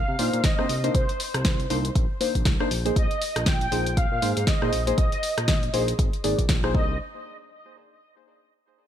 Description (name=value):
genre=deep house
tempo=119 BPM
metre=4/4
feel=swing 58% on 16ths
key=unclear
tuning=A4 = 439 Hz
part: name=mellow horn-like synth lead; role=melody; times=0.0-7.0 s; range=C5 to G5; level=-30 LUFS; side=right 1 dB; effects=ensemble chorus, cassette tape, digital delay
part: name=smooth synth bass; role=bass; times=0.0-7.0 s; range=Ab1 to C3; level=-29 LUFS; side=equal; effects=sidechain pumping
part: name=deep mellow chord stab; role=stabs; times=0.2-6.9 s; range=Bb3 to D5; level=-28 LUFS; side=left 1 dB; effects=chorus, vintage 12-bit sampler grit, sidechain pumping
part: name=deep house drum kit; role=drums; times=0.2-6.7 s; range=hi-hat, rim click, snare drum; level=-28 LUFS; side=equal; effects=none
part: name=electronic kick drum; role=drums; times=0.4-6.9 s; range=none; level=-24 LUFS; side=equal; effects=none
room=little or no reverb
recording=none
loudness=-21 LUFS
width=side -10 dB against mid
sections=0.0-7.0 A section; 7.0-8.9 B section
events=drop 0.0-7.0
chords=0.0 Cm9; 2.7 Bb9sus4; 6.7 Cm9; 7.0 N.C.